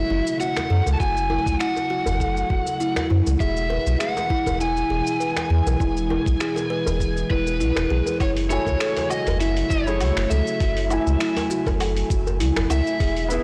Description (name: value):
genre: organic downtempo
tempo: 100 BPM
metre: 4/4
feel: swing 54% on 16ths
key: F# minor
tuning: A4 = 437 Hz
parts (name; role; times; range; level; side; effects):
- overdriven slide guitar; melody; 0.0-13.4 s; B4 to A5; -29 LUFS; equal; digital delay
- ethereal airy pad; sustained chords; 0.0-13.4 s; B2 to G#5; -34 LUFS; equal; ensemble chorus, built-in reverb, vintage 12-bit sampler grit, sidechain pumping
- buzzing kalimba; arpeggios; 0.0-13.4 s; E4 to B4; -28 LUFS; equal; tape echo
- warm sub bass; bass; 0.0-13.4 s; E1 to F#2; -25 LUFS; equal; tube saturation, sidechain pumping
- dusty soul sampler-style drum kit; drums; 0.3-13.4 s; finger snaps, hi-hat, shaker, woodblock; -34 LUFS; equal; studio reverb, soft clipping on snare
- djembe; percussion; 0.6-13.4 s; none; -33 LUFS; equal; none
- electronic kick drum; drums; 1.0-13.1 s; none; -27 LUFS; equal; studio reverb
- felt-muted upright piano; accompaniment; 8.5-13.4 s; A3 to G#5; -34 LUFS; equal; sidechain pumping, tape echo
room: light reverb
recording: blown-out, overdriven recording, overdrive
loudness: -22 LUFS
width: mono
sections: 0.0-8.2 A section; 8.2-13.4 B section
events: none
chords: 0.0 F#m7; 3.4 E; 8.2 F#m7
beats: 0.41 | 1.00 1.60 2.21 2.81 | 3.40 4.00 4.61 5.21 | 5.80 6.41 7.00 7.61 | 8.21 8.80 9.40 10.01 | 10.61 11.21 11.80 12.40 | 13.01